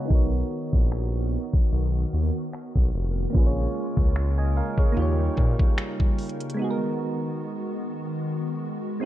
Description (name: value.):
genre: contemporary R&B.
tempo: 74 BPM.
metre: 4/4.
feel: swing 54% on 16ths.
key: G# dorian.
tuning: A4 = 441 Hz.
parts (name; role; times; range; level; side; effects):
soft electric-piano-like synth keys; accompaniment; 0.0-9.1 s; G#3 to C#6; -31 LUFS; right 3 dB; chorus.
hollow soft pad; sustained chords; 0.0-9.1 s; C#3 to A#4; -32 LUFS; left 1 dB; ensemble chorus.
smooth synth bass; bass; 0.1-5.5 s; E#1 to A#2; -24 LUFS; equal; none.
trap drum kit; drums; 0.1-6.6 s; finger snaps, hi-hat, kick drum; -21 LUFS; equal; none.
room: little or no reverb.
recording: dark, warm production, low-pass filter.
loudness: -22 LUFS.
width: side -13 dB against mid.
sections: 0.0-6.6 A section; 6.6-9.1 B section.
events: filter sweep 0.0-6.6.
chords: 0.1 Bmaj7; 3.3 A#m7; 5.0 D#7; 6.6 G#m7.